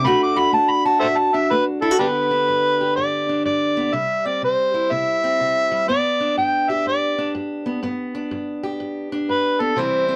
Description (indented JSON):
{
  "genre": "acoustic country blues, solo or duo",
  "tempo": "124 BPM",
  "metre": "4/4",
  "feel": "swing 64% on 8ths",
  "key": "G major",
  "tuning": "A4 = 440 Hz",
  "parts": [
    { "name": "overdriven harmonica", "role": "melody", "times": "0.0-10.2 s", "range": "D4 to D6", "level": "-21 LUFS", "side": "equal", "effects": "none" },
    { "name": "fingerpicked steel-string acoustic guitar", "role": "accompaniment", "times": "0.0-10.2 s", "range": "G2 to G4", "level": "-26 LUFS", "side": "equal", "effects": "none" }
  ],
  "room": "moderate booth ambience, RT60 0.2 s",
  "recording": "close, detailed microphones",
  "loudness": "-20 LUFS",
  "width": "mono",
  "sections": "0.0-2.0 A section; 2.0-10.2 B section",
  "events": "harmonica solo 0.0-2.0",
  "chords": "0.1 D; 2.0 G; 3.9 C; 5.9 G",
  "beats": "| 0.05 0.54 1.02 1.51 | 1.99 2.48 2.96 3.45 | 3.94 4.42 4.91 5.40 | 5.88 6.37 6.86 7.34 | 7.83 8.31 8.80 9.28 | 9.77"
}